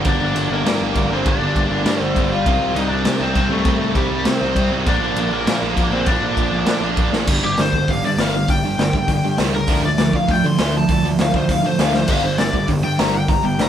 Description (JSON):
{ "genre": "punk rock", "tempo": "200 BPM", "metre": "4/4", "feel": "straight", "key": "G minor", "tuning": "A4 = 440 Hz", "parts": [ { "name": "distorted electric guitar", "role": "riff", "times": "0.0-13.7 s", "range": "G2 to Eb4", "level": "-23 LUFS", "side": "right 6 dB", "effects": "overdrive" }, { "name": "overdriven semi-hollow guitar", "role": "riff", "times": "0.0-13.7 s", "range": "G2 to D4", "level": "-25 LUFS", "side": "left 5 dB", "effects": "none" }, { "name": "fuzz picked electric bass", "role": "bass", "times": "0.0-13.7 s", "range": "G1 to D3", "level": "-23 LUFS", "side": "equal", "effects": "overdrive" }, { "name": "raw garage drum kit", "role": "drums", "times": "0.0-13.7 s", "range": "crash cymbal, hi-hat, kick drum, snare drum", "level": "-21 LUFS", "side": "equal", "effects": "none" }, { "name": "bluesy overdriven lead guitar", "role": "melody", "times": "0.1-13.7 s", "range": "G3 to C6", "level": "-22 LUFS", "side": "left 2 dB", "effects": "distortion, digital delay" } ], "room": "light reverb", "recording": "band playing live in one room", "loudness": "-16 LUFS", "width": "side -10 dB against mid", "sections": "0.0-7.3 A section; 7.3-13.7 B section", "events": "half time 0.0-7.3; drum fill 7.1, 11.9; lead electric guitar solo 7.3-13.7", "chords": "0.0 Gm; 2.5 Cm; 4.9 Bb; 7.3 G5; 9.7 Dm; 12.1 G5", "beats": "| 0.07 0.36 0.66 0.96 | 1.26 1.56 1.86 2.16 | 2.46 2.77 3.07 3.37 | 3.67 3.97 4.27 4.57 | 4.87 5.17 5.47 5.78 | 6.08 6.38 6.68 6.98 | 7.28 7.58 7.88 8.19 | 8.49 8.79 9.09 9.39 | 9.69 9.99 10.29 10.59 | 10.89 11.19 11.49 11.79 | 12.09 12.39 12.69 12.99 | 13.29 13.59" }